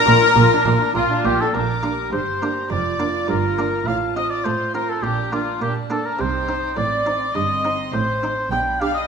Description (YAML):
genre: classical, baroque-style concerto movement with solo episodes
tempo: 104 BPM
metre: 4/4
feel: straight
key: Bb major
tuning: A4 = 439 Hz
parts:
  - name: mellow oboe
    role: melody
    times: 0.0-9.0 s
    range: F4 to G5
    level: -22 LUFS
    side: left 2 dB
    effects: none
  - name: warm chamber violin section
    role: melody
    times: 0.0-9.1 s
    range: G5 to D6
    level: -32 LUFS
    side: left 4 dB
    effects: none
  - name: warm chamber violin section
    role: second line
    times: 0.0-9.1 s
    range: F4 to G5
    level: -24 LUFS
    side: left 4 dB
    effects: none
  - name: buff-stop harpsichord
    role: accompaniment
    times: 0.0-9.1 s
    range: F2 to G4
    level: -28 LUFS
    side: right 3 dB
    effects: none
  - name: dark chamber viola section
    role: accompaniment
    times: 0.0-9.1 s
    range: C4 to G4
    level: -27 LUFS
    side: right 5 dB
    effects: none
  - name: rich chamber double bass section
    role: bass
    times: 0.1-9.0 s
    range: F1 to Bb2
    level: -26 LUFS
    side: right 5 dB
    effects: none
  - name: warm chamber cello section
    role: bass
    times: 0.1-9.0 s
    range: F2 to Bb3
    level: -26 LUFS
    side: right 4 dB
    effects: none
room: wet recital hall reverb, RT60 1.4 s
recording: minimal, uncompressed stereo recording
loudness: -18 LUFS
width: side -6 dB against mid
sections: 0.0-1.6 A section; 1.6-9.1 B section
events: none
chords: 0.0 Bb; 3.9 F/A; 5.0 Bb; 6.2 Cm; 8.5 G/B